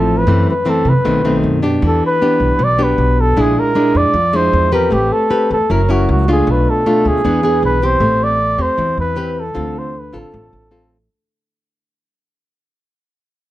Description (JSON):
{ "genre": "bossa nova", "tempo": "155 BPM", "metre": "4/4", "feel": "straight", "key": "A minor", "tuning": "A4 = 440 Hz", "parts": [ { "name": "mellow flugelhorn", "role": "melody", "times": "0.0-10.9 s", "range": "F#4 to D5", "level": "-16 LUFS", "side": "equal", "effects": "none" }, { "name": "nylon-string guitar", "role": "accompaniment", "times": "0.0-11.1 s", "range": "F#2 to B4", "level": "-16 LUFS", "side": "equal", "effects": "none" }, { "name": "upright bass", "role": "bass", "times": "0.0-11.1 s", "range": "F#1 to C3", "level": "-18 LUFS", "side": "equal", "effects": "none" } ], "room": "light reverb", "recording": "dark, warm production", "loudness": "-12 LUFS", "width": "side -15 dB against mid", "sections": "0.0-8.0 A section; 8.0-11.1 B section", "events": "fade-out 8.0-11.1", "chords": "0.3 F#m7b5; 1.1 B7b9; 1.8 Em7; 3.4 Bb7#11; 4.9 Am9; 5.7 F#7; 6.5 Bm7b5; 7.2 E7; 8.0 Am9; 9.6 Dm7" }